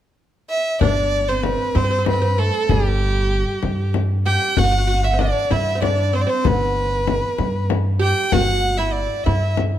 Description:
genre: Persian modal ensemble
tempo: 64 BPM (dotted quarters)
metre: 6/8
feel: straight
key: G dastgah mahur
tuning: A4 = 435 Hz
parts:
  - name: warm violin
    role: melody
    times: 0.5-9.6 s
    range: G4 to G5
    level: -22 LUFS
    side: equal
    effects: none
  - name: oud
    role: second line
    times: 0.8-9.6 s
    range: G3 to G4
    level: -25 LUFS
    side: right 5 dB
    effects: none
  - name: upright bass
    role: bass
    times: 0.8-9.8 s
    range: G1 to G2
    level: -20 LUFS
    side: equal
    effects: none
  - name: frame drum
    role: percussion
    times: 0.8-9.7 s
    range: none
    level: -24 LUFS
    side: left 7 dB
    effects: none
room: light reverb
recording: close, detailed microphones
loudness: -17 LUFS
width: side -11 dB against mid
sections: 0.8-9.8 A section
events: none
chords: none

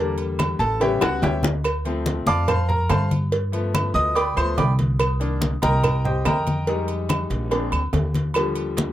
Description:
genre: Afro-Cuban jazz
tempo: 143 BPM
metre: 4/4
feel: straight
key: unclear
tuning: A4 = 440 Hz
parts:
  - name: bright upright piano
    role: accompaniment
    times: 0.0-8.9 s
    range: C#3 to Eb6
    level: -24 LUFS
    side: left 1 dB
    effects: none
  - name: upright bass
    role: bass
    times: 0.0-8.9 s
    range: A1 to G2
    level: -24 LUFS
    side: equal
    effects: none
  - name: agogo bells and timbales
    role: percussion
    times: 0.2-8.9 s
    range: none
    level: -29 LUFS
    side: right 3 dB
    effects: none
  - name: congas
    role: percussion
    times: 0.2-8.9 s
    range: none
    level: -26 LUFS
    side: left 1 dB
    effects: none
  - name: claves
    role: percussion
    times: 0.4-8.6 s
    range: none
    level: -33 LUFS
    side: right 4 dB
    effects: none
  - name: cowbell and bongos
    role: percussion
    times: 0.4-8.9 s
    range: none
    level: -27 LUFS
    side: right 1 dB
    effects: none
room: light reverb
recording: none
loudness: -19 LUFS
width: side -13 dB against mid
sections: 0.0-1.6 A section; 1.6-8.9 A section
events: upright piano solo 0.0-8.9; drum fill 1.0-1.6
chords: 0.0 Em7b5; 0.8 A7; 1.6 Dm7; 3.3 G7; 5.0 Cm7; 6.7 Fm7; 7.5 Bb7; 8.4 Ebmaj7

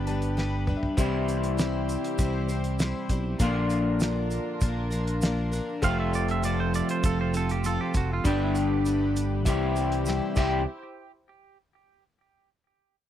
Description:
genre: folk rock and heartland rock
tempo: 99 BPM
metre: 4/4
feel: straight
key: C major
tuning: A4 = 440 Hz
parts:
  - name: picked twelve-string acoustic guitar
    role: accompaniment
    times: 0.0-10.6 s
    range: G2 to C5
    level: -33 LUFS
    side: left 4 dB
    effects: none
  - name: warm upright piano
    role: accompaniment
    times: 0.0-10.6 s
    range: G4 to A5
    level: -40 LUFS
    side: left 6 dB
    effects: none
  - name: dark chamber string section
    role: sustained chords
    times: 0.0-10.8 s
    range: C4 to C5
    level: -38 LUFS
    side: equal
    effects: none
  - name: electric guitar through a small old amp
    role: riff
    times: 0.0-10.6 s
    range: F2 to G4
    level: -29 LUFS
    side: equal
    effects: none
  - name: fingered electric bass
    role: bass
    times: 0.0-10.7 s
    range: F1 to C2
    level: -29 LUFS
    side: equal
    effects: none
  - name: cloth-damped thuddy drum kit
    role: drums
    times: 0.1-10.5 s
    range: crash cymbal, hi-hat, kick drum, snare drum, toms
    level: -28 LUFS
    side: equal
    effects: none
  - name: tube shaker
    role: percussion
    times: 1.0-10.6 s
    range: none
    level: -44 LUFS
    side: right 5 dB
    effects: none
  - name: pedal steel guitar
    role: second line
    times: 5.8-10.7 s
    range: E4 to F5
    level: -33 LUFS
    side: right 6 dB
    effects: tape echo
room: little or no reverb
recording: dry, close 1970s-style studio recording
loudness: -24 LUFS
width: side -11 dB against mid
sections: 0.0-10.7 A section; 10.7-13.1 B section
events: upright piano fill 0.0-1.0; drum fill 0.4-1.0, 10.1-10.7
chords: 0.0 G; 1.0 C; 3.4 Bb; 5.8 F; 8.3 G; 9.5 C

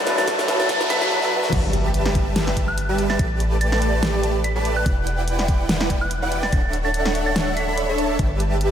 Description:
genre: future bass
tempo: 144 BPM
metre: 4/4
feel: swing 54% on 16ths, half-time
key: D major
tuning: A4 = 444 Hz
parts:
  - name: bell-like tine electric piano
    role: accompaniment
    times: 0.0-1.5 s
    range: F#3 to B4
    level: -25 LUFS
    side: left 2 dB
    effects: medium stereo tremolo, sidechain pumping, ping-pong delay
  - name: rich studio string section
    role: sustained chords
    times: 0.0-1.1 s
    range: D2 to C#5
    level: -34 LUFS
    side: left 2 dB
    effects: none
  - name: supersaw chords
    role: riff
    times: 0.0-8.7 s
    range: F#3 to B5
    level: -23 LUFS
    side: right 1 dB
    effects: analog chorus, sidechain pumping
  - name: riser and impact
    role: sound effects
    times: 0.0-3.2 s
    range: none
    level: -28 LUFS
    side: right 1 dB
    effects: none
  - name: big-room dance drum kit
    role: drums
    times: 0.1-8.7 s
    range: crash cymbal, hi-hat, snare drum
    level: -26 LUFS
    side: equal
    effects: high-pass filter on snare, high-pass filter on hats, high-pass filter on cymbals
  - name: glassy synth bell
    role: melody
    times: 0.2-8.2 s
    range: F#6 to B6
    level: -28 LUFS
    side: right 1 dB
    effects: chorus, tremolo, sidechain pumping, ping-pong delay
  - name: electronic kick drum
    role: drums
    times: 0.3-8.3 s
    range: none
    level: -22 LUFS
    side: equal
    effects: none
  - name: warm 808-style bass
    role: bass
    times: 1.5-8.7 s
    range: D1 to A1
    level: -24 LUFS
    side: equal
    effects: sidechain pumping
room: wet lush hall reverb, RT60 2.0 s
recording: dreamy mix soaked in reverb, high-pass filter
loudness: -18 LUFS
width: side -9 dB against mid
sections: 0.0-1.5 A section; 1.5-8.7 B section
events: build-up 0.0-1.5; drum fill 0.0-1.1, 1.1-1.5; riser 0.0-1.1; drop 1.5-8.7; impact 1.5-3.2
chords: 0.0 Dmaj7; 1.5 G6; 3.2 A7sus4; 4.9 Em7; 6.5 Dmaj7; 8.2 G6

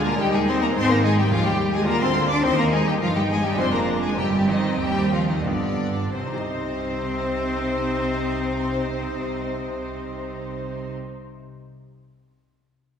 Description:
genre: classical, baroque-style concerto movement with solo episodes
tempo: 86-108 BPM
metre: 3/4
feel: straight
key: C minor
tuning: A4 = 441 Hz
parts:
  - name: rich cello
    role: melody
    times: 0.0-10.9 s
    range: D3 to D4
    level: -25 LUFS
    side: equal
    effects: none
  - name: rich chamber violin section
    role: melody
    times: 0.0-10.9 s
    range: C5 to D6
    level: -30 LUFS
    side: left 4 dB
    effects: none
  - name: rich chamber violin section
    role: second line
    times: 0.0-10.9 s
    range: D4 to D5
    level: -29 LUFS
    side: left 2 dB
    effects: none
  - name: lute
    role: accompaniment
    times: 0.0-11.2 s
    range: D2 to Eb5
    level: -33 LUFS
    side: equal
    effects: none
  - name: rich chamber viola section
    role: accompaniment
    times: 0.0-10.9 s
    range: B3 to G4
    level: -30 LUFS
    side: right 2 dB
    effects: none
  - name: dark chamber double bass section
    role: bass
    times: 0.0-10.9 s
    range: F1 to Eb2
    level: -29 LUFS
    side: right 2 dB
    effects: none
  - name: warm chamber cello section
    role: bass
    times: 0.0-10.9 s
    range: D2 to D3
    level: -31 LUFS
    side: right 3 dB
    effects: none
room: wet concert hall reverb, RT60 2.0 s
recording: heard from further back in the room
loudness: -20 LUFS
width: side -7 dB against mid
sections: 0.0-6.1 A section; 6.1-10.3 B section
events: slowing down 1.6-6.1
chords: 0.2 Ebmaj7; 0.8 Ab; 1.9 Dm7b5; 2.4 Cm/Eb; 3.6 Ddim/F; 4.2 Cm/G; 5.5 G7; 6.1 Cm

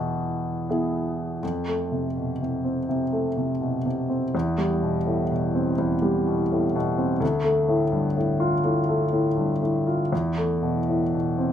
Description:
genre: classical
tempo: 82 BPM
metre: 4/4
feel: rubato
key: unclear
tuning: A4 = 441 Hz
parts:
  - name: warm concert grand piano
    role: accompaniment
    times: 0.0-11.5 s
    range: D2 to G#4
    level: -22 LUFS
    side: equal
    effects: none
room: moderate studio reverb, RT60 0.5 s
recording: band playing live in one room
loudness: -22 LUFS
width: side -9 dB against mid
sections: 0.0-1.4 A section; 1.4-11.5 B section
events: none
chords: 0.0 E; 1.4 F; 4.3 Cmaj7/E; 7.2 Dm; 10.1 Asus2/E

